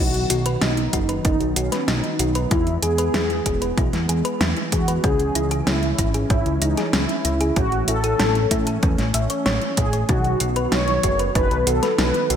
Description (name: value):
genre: synthwave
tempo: 95 BPM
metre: 4/4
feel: straight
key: unclear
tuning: A4 = 442 Hz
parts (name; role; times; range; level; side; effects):
- mellow synth brass; melody; 0.0-12.4 s; C#4 to C#5; -24 LUFS; equal; chorus, ping-pong delay
- warm analog pad; sustained chords; 0.0-12.4 s; D#3 to C#4; -28 LUFS; right 1 dB; chorus, sidechain pumping
- thumb-piano-like synth pluck; arpeggios; 0.0-12.4 s; C#4 to E5; -28 LUFS; left 2 dB; chorus, ping-pong delay
- fat analog bass; bass; 0.0-12.4 s; E1 to A2; -24 LUFS; equal; tube saturation
- pop drum kit; drums; 0.1-12.4 s; hi-hat, snare drum; -24 LUFS; equal; overdrive, gated reverb
- electronic kick drum; drums; 0.9-11.5 s; none; -22 LUFS; equal; overdrive
room: moderate lush hall reverb, RT60 1.8 s, digital ambience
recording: bright 1980s-style digital production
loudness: -18 LUFS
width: side -8 dB against mid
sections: 0.0-12.4 A section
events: none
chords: 0.0 B; 2.5 E; 5.0 C#m; 7.6 A; 10.1 B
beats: 0.62 1.25 1.88 | 2.51 3.14 3.78 4.41 | 5.04 5.67 6.30 6.93 | 7.57 8.20 8.83 9.46 | 10.09 10.72 11.36 11.99